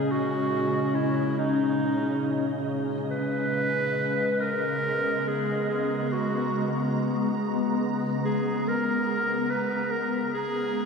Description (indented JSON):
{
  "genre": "ambient",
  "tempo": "71 BPM",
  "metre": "4/4",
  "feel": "straight",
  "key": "unclear",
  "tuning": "A4 = 440 Hz",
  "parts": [
    { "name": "clear clarinet", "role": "melody", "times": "0.0-10.9 s", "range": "D#4 to B4", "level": "-28 LUFS", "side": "right 1 dB", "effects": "ping-pong delay" },
    { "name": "glassy FM pad", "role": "sustained chords", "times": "0.0-10.9 s", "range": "A#2 to A#5", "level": "-27 LUFS", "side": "left 1 dB", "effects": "ensemble chorus, built-in reverb" },
    { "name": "analog drone", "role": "drone", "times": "0.0-10.9 s", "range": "C#3 to G#3", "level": "-34 LUFS", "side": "equal", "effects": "chorus" }
  ],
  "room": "wet huge ambient reverb, RT60 7.2 s",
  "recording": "none",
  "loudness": "-24 LUFS",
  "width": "side -5 dB against mid",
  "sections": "0.0-10.9 A section",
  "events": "fade-out 8.1-10.9",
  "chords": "0.0 C#sus2; 3.5 G#madd9/C#"
}